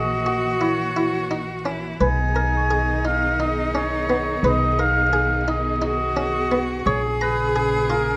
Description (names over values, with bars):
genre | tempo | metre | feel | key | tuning
contemporary instrumental, chamber music in an uneven meter | 173 BPM (eighths) | 7/8 | straight | unclear | A4 = 444 Hz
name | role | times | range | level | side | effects
warm oboe | melody | 0.0-8.2 s | Bb4 to Ab5 | -26 LUFS | equal | none
clear cello | second line | 0.0-8.2 s | Eb4 to Ab4 | -28 LUFS | equal | none
clear symphonic string section | sustained chords | 0.0-8.2 s | Bb2 to Ab4 | -31 LUFS | equal | none
buff-stop harpsichord | arpeggios | 0.0-8.2 s | Cb4 to Bb5 | -28 LUFS | equal | none
upright bass | bass | 0.0-8.2 s | Bb1 to Cb2 | -28 LUFS | equal | none
worn celesta | texture | 0.0-8.2 s | Bb5 to Eb6 | -40 LUFS | equal | none
room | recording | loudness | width
moderate recital hall reverb, RT60 1.4 s | none | -22 LUFS | mono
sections
0.0-8.2 A section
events
none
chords
0.0 Gb7/Bb; 2.0 Cb6; 6.9 Bbm7